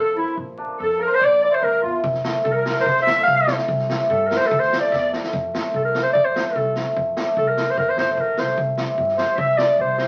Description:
klezmer; 147 BPM; 2/4; straight; F major from 5.3 s; A4 = 440 Hz
warm clarinet; melody; 0.0-10.1 s; E4 to F5; -21 LUFS; equal
musette accordion; second line; 0.0-5.1, 9.2-10.1 s; E4 to F5; -30 LUFS; equal
cimbalom; accompaniment; 0.0-10.1 s; E3 to E4; -26 LUFS; equal
upright bass; bass; 0.0-10.0 s; F1 to G2; -34 LUFS; equal
street-band drum kit; drums; 2.0-10.1 s; kick drum, snare drum; -30 LUFS; equal
wet studio reverb, RT60 0.6 s; very old 78 rpm record, vinyl crackle; -20 LUFS; mono
0.0-5.3 A section; 5.3-10.1 B section
speeding up 0.0-10.1; drum fill 4.9-5.3
0.0 Bb; 2.0 F; 3.7 C; 4.5 Dm; 5.3 F; 8.6 C

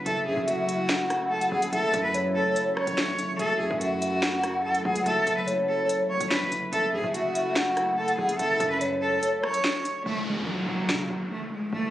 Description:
hip hop, drill; 144 BPM; 4/4; half-time; F# minor; A4 = 440 Hz
warm analog pad; sustained chords; 0.0-10.0 s; C#3 to E4; -34 LUFS; equal; chorus
distorted 808-style bass; bass; 0.0-11.9 s; F#1 to C#3; -36 LUFS; right 1 dB; distortion
rich cello; melody; 0.1-11.9 s; F#3 to C#5; -27 LUFS; equal; tape echo
hollow clarinet-like synth lead; second line; 0.1-9.6 s; C#5 to F#5; -28 LUFS; left 1 dB; chorus, tape echo
drill drum kit; drums; 0.1-11.0 s; handclaps, hi-hat, rim click, snare drum; -29 LUFS; equal
downlifter; sound effects; 10.1-11.9 s; -34 LUFS; equal
light reverb, digital ambience; recorded on a phone in the room, club reverb, compression; -24 LUFS; side -13 dB against mid
0.0-10.1 A section; 10.1-11.9 B section
kick muted 9.2-10.1; break 10.1-11.9
0.0 F#m7; 10.1 F#m

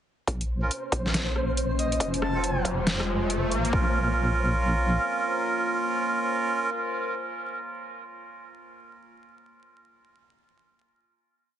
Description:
deep dubstep; 139 BPM; 4/4; swing 61% on 16ths, half-time; Bb harmonic minor; A4 = 440 Hz
overtone-sweeping drone; sustained chords; 0.7-6.7 s; F3 to C5; -34 LUFS; left 1 dB; chorus, built-in reverb, phaser
deep soft wobble bass; bass; 0.3-5.0 s; F1 to Bb1; -28 LUFS; equal; chorus
dubstep drum kit; drums; 0.3-3.7 s; hi-hat, rim click, snare drum; -29 LUFS; equal; overdrive
electronic kick drum; drums; 0.3-3.8 s; -27 LUFS; equal; overdrive, high-pass filter on kick, high-pass filter on room
riser; sound effects; 1.4-3.7 s; -33 LUFS; left 1 dB
flickering grainy texture; texture; 0.6-3.7 s; C5; -35 LUFS; right 1 dB; built-in reverb
melodica; stabs; 0.6-6.7 s; C4 to Bb4; -28 LUFS; right 2 dB; low-pass filter, dub echo
breathy flute-like synth lead; melody; 1.8-2.6 s; Eb5 to A5; -33 LUFS; equal; lush chorus, dub echo
moderate spring reverb, RT60 1.1 s; heavily compressed radio sound, multiband compression, vinyl crackle, nothing above 10.8 kHz; -24 LUFS; side -10 dB against mid
0.3-3.7 build; 3.7-7.2 final chord
build-up 0.3-3.7; filter sweep on melodica 0.3-3.7; riser 1.4-3.7
0.3 Bbm; 2.0 F; 3.7 Bbm

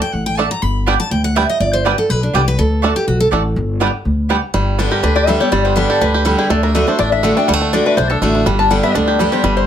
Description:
bluegrass; 245 BPM; 4/4; straight; G major; A4 = 439 Hz
picked steel-string acoustic guitar; accompaniment; 0.0-9.7 s; G2 to B5; -18 LUFS; equal
upright bass; bass; 0.1-9.7 s; G1 to D2; -18 LUFS; equal
bluegrass banjo; melody; 0.4-9.7 s; G3 to G4; -18 LUFS; right 4 dB
mandolin; stabs; 0.4-4.4 s; A3 to A5; -19 LUFS; right 5 dB
lap resonator guitar; second line; 4.9-9.7 s; Ab4 to A5; -18 LUFS; left 6 dB
moderate small room ambience, RT60 0.5 s; -13 LUFS; side -9 dB against mid
0.0-4.5 A section; 4.5-9.7 A section
steel-string acoustic guitar solo 0.0-4.5; resonator guitar played with a steel bar solo 4.5-9.7
0.0 D; 0.6 G; 2.6 D; 3.6 G; 6.5 D; 8.5 G

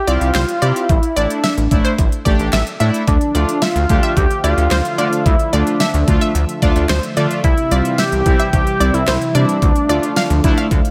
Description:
synth-pop; 110 BPM; 4/4; straight; D minor; A4 = 438 Hz
octave-doubled lead; melody; 0.0-10.9 s; D4 to G4; -22 LUFS; equal; chorus
unison pluck; second line; 0.1-10.7 s; C5 to F5; -25 LUFS; equal; digital delay
analog synth brass; accompaniment; 0.1-10.7 s; G3 to G4; -24 LUFS; equal; chorus
chorused synth bass; bass; 0.1-10.8 s; A1 to D3; -20 LUFS; equal
pop drum kit; drums; 0.1-10.9 s; handclaps, hi-hat, kick drum, snare drum; -20 LUFS; equal; gated reverb
phased analog pad; sustained chords; 3.1-10.9 s; C3 to E5; -28 LUFS; equal; phaser, chorus
light reverb; -16 LUFS; mono
0.0-10.9 A section
0.0 C; 0.9 Asus4; 3.1 Dmadd9; 7.4 C; 9.6 Dm

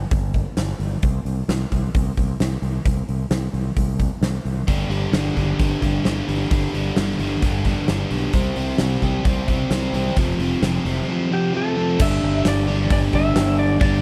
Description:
classic rock; 131 BPM; 4/4; straight; A4 = 439 Hz
growling fingered electric bass; bass; 0.0-14.0 s; F1 to C2; -26 LUFS; equal; overdrive
huge arena drum kit; drums; 0.1-13.9 s; crash cymbal, hi-hat, kick drum, snare drum; -25 LUFS; equal
biting overdriven guitar; riff; 4.7-14.0 s; F2 to C4; -24 LUFS; equal
electric slide guitar; melody; 11.3-14.0 s; G4 to E5; -27 LUFS; equal
small room reverb; -21 LUFS; mono
0.0-12.0 A section; 12.0-14.0 B section
0.0 N.C.; 4.7 G5; 8.3 C5; 10.2 F; 12.0 G5

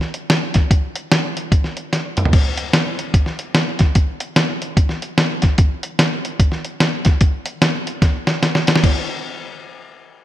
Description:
gospel; 148 BPM; 4/4; swing 62% on 8ths
lo-fi sampler-style drum kit; drums; 0.0-9.0 s; crash cymbal, hi-hat, kick drum, snare drum, toms; -15 LUFS; equal
moderate lush hall reverb, RT60 2.0 s, digital ambience; bright 1980s-style digital production; -15 LUFS; side -13 dB against mid
0.0-8.8 A section; 8.8-10.2 B section
drum fill 1.9-2.3, 8.0-8.8

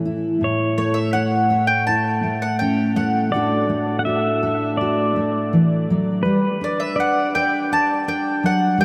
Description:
acoustic folk duo or small band; 82 BPM; 4/4; straight; A mixolydian; A4 = 441 Hz
fingerpicked steel-string acoustic guitar; accompaniment; 0.0-8.8 s; A2 to C#5; -22 LUFS; equal; lush chorus
pedal steel guitar; second line; 0.4-8.8 s; B4 to F#5; -27 LUFS; equal; analog delay
mandolin; melody; 0.8-8.8 s; C#5 to A5; -23 LUFS; equal; analog delay
wet huge ambient reverb, RT60 4.0 s; dreamy mix soaked in reverb; -20 LUFS; mono
0.4-8.8 A section
0.4 A; 3.3 D/A; 6.2 G

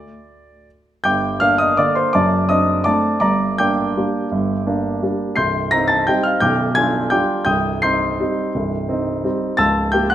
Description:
classical, piano waltz; 168 BPM; 3/4; uneven beats, rubato; G minor; A4 = 440 Hz
warm grand piano; solo; 0.0-10.1 s; B0 to C7; -16 LUFS; equal
moderate recital hall reverb, RT60 1.6 s; -16 LUFS; side -11 dB against mid
0.0-1.0 A section; 1.0-10.1 B section
0.0 N.C.; 1.0 Gm; 2.1 D7/F#; 3.2 Gm; 5.4 Cm; 6.4 G7/B; 7.5 Cm; 9.6 C#dim7

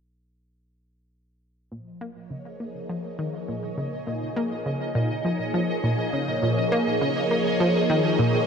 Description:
ambient, sequencer-driven space music; 102 BPM; 4/4; straight; Bb minor; A4 = 445 Hz
phased string machine; sustained chords; 2.3-8.5 s; F3 to Db5; -27 LUFS; equal; ensemble chorus, phaser
analog pluck; riff; 1.7-8.4 s; Bb2 to Bb3; -26 LUFS; equal; chorus, analog delay
pulsing gated texture; texture; 2.9-8.5 s; Eb5; -32 LUFS; right 1 dB; chorus, built-in reverb
wet lush hall reverb, RT60 2.6 s; cassette tape, faint mains hum; -22 LUFS; side -6 dB against mid
1.7-8.5 A section
fade-in on synth arpeggio sound 1.7-8.5; fade-in on string machine 1.7-8.5; fade-in on synth texture 1.7-8.5
1.7 Bbm

